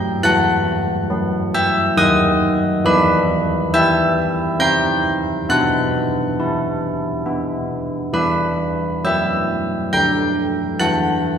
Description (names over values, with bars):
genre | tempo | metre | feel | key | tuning
classical, tune for church bells | 68 BPM | 3/4 | straight | E minor | A4 = 442 Hz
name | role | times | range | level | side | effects
carillon bells | solo | 0.0-11.4 s | D3 to G6 | -16 LUFS | equal | none
room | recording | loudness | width
wet church reverb, RT60 2.6 s | heard from further back in the room | -16 LUFS | side -8 dB against mid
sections
0.0-11.4 A section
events
none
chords
0.3 D#m; 2.8 E5; 4.6 C5; 5.5 Bsus4; 7.2 N.C.; 8.1 Em; 10.8 N.C.